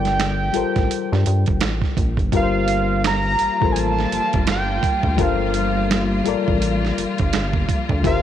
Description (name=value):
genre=R&B, neo-soul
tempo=84 BPM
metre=4/4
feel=swing 60% on 16ths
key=G minor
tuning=A4 = 435 Hz
part: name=fat analog lead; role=melody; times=0.0-8.2 s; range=F5 to Bb5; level=-23 LUFS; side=right 2 dB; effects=chorus, phaser, tape echo
part: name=reed electric piano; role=accompaniment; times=0.0-8.2 s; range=G3 to D5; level=-24 LUFS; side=left 9 dB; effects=none
part: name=rubbery square bass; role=bass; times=0.0-8.2 s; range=G1 to G2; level=-22 LUFS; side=equal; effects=none
part: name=dusty soul sampler-style drum kit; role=drums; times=0.1-8.2 s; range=finger snaps, hi-hat, kick drum, snare drum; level=-22 LUFS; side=right 3 dB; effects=none
part: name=rich symphonic string section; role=sustained chords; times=2.3-8.2 s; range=G3 to F4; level=-26 LUFS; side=left 1 dB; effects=none
room=light reverb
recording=1960s-style stereo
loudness=-17 LUFS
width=side -10 dB against mid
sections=0.0-2.3 A section; 2.3-8.2 A section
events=none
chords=0.0 Gm11